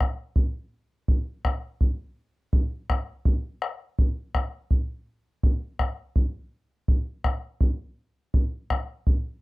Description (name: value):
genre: andean folk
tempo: 83 BPM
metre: 2/4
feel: straight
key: none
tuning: none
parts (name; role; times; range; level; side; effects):
- bombo; percussion; 0.0-9.2 s; none; -22 LUFS; equal; none
room: light reverb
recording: dry, close 1970s-style studio recording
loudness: -25 LUFS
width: side -22 dB against mid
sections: 0.0-9.4 A section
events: none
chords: none